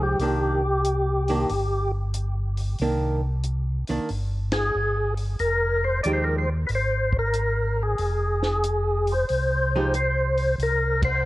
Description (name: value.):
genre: soul jazz organ trio.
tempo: 92 BPM.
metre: 4/4.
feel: swing 67% on 8ths.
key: C minor.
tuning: A4 = 440 Hz.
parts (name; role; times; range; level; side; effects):
percussive tonewheel organ; melody; 0.0-11.3 s; G4 to D5; -24 LUFS; left 1 dB; slow rotary speaker, overdrive, chorus vibrato.
archtop guitar, miked and amplified; accompaniment; 0.0-9.9 s; Eb3 to G4; -28 LUFS; right 2 dB; none.
mellow tonewheel organ; bass; 0.0-11.3 s; F1 to Eb2; -25 LUFS; equal; chorus vibrato, slow rotary speaker.
compact cocktail drum kit; drums; 0.2-11.1 s; hi-hat, kick drum, ride cymbal, snare drum; -32 LUFS; equal; none.
room: light reverb, small room ambience.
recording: worn, warbling old tape, cassette tape, warbly pitch drift.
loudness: -22 LUFS.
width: side -17 dB against mid.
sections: 0.0-11.3 A section.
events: band accent 4.4-4.8, 10.9-11.2.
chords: 0.2 Cm9; 5.4 Fm7; 10.6 C7(no3).